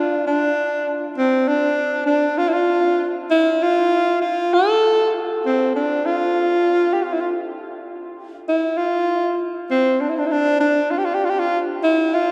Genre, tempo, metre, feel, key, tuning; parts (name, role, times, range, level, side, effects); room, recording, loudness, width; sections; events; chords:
turkish; free time; A4 = 440 Hz
clear alto saxophone; solo; 0.0-12.3 s; C4 to A4; -19 LUFS; equal
wet cathedral reverb, RT60 6.4 s; recorded in a church or concert hall; -19 LUFS; mono
0.0-12.3 A section